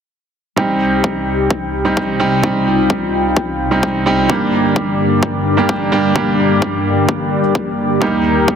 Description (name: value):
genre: EDM, festival progressive house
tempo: 129 BPM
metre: 4/4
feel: straight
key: C minor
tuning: A4 = 444 Hz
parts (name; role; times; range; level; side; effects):
- bright baby grand piano; accompaniment; 0.6-8.6 s; G3 to G4; -16 LUFS; right 2 dB; sidechain pumping, digital delay
- lush unison pad; sustained chords; 0.6-8.6 s; C2 to G5; -17 LUFS; left 2 dB; chorus, sidechain pumping
- electronic kick drum; drums; 0.6-8.6 s; none; -20 LUFS; left 1 dB; overdrive, high-pass filter on kick
room: light reverb, small room ambience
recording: dense, heavily limited modern master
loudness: -13 LUFS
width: side -7 dB against mid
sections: 0.6-8.6 A section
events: filter sweep on analog synth pad 0.6-8.6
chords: 0.6 Cm; 4.3 Gm; 8.0 Eb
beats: | 0.57 1.04 1.50 1.97 | 2.44 2.90 3.37 3.83 | 4.30 4.76 5.23 5.69 | 6.16 6.62 7.09 7.55 | 8.02 8.48